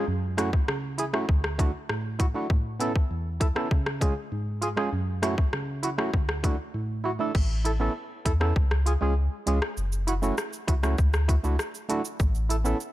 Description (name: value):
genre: dancehall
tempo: 99 BPM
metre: 4/4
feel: straight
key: F# minor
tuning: A4 = 439 Hz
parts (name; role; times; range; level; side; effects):
- percussive organ stab; accompaniment; 0.0-12.8 s; D2 to A4; -28 LUFS; right 2 dB; chorus
- island pop drum kit; drums; 0.4-12.9 s; crash cymbal, hi-hat, kick drum, rim click, shaker; -26 LUFS; equal; overdrive
- warm sub bass; bass; 7.3-12.7 s; F#1 to E2; -25 LUFS; equal; none
room: little or no reverb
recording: dark, warm production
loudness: -24 LUFS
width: side -15 dB against mid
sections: 0.0-7.3 A section; 7.3-12.9 B section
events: silent gap 6.7-7.3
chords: 0.1 F#m7; 1.3 Dadd9; 2.5 Aadd9; 3.7 C#; 4.9 F#m7; 6.1 Dadd9; 7.3 Aadd9; 8.6 C#; 9.8 F#m7; 11.0 Dadd9; 12.2 Aadd9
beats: | 0.08 0.68 1.29 1.89 | 2.50 3.11 3.71 4.32 | 4.92 5.53 6.14 6.74 | 7.35 7.96 8.56 9.17 | 9.77 10.38 10.98 11.59 | 12.20 12.80